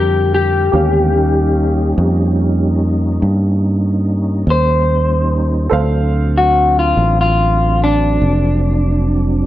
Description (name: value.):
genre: blues.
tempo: 48 BPM (dotted quarters).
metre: 12/8.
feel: straight.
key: unclear.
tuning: A4 = 438 Hz.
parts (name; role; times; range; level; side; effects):
electric guitar through a small old amp; melody; 0.0-9.4 s; D4 to C5; -16 LUFS; left 3 dB; none.
mellow tonewheel organ; sustained chords; 0.0-9.5 s; D3 to Bb4; -20 LUFS; right 2 dB; slow rotary speaker, chorus vibrato.
fingered electric bass; bass; 0.0-9.4 s; E#1 to G2; -15 LUFS; equal; none.
warm upright piano; accompaniment; 0.7-9.5 s; Db4 to F5; -24 LUFS; right 5 dB; none.
room: light reverb.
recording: dark, warm production.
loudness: -12 LUFS.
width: side -14 dB against mid.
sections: 0.0-9.5 A section.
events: none.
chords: 0.0 Gm7; 0.7 Eb7; 5.7 D7#9.